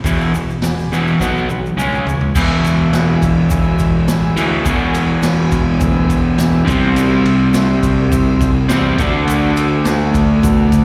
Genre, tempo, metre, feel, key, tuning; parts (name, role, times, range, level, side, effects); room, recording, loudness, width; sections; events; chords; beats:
garage rock duo or trio; 104 BPM; 4/4; straight; E mixolydian; A4 = 440 Hz
crunchy overdriven guitar; riff; 0.0-10.8 s; E2 to D4; -16 LUFS; equal
fuzz fingered electric bass; bass; 0.0-10.8 s; E1 to B2; -23 LUFS; equal; overdrive
raw garage drum kit; drums; 0.0-10.8 s; crash cymbal, hi-hat, kick drum, ride cymbal, snare drum, toms; -22 LUFS; equal
combo organ; sustained chords; 0.1-10.8 s; F#4 to G#5; -29 LUFS; equal
egg shaker; percussion; 0.1-10.8 s; -37 LUFS; equal
light reverb; live gig heard through the venue's PA, recital hall reverb; -15 LUFS; mono
0.0-2.3 A section; 2.3-10.8 B section
drum fill 1.2-2.3
0.0 E; 1.2 B5; 1.8 C#5; 2.3 E; 6.7 C; 9.0 D
| 0.04 0.62 1.19 1.77 | 2.35 2.93 3.50 4.08 | 4.65 5.23 5.81 6.38 | 6.96 7.54 8.12 8.70 | 9.27 9.85 10.43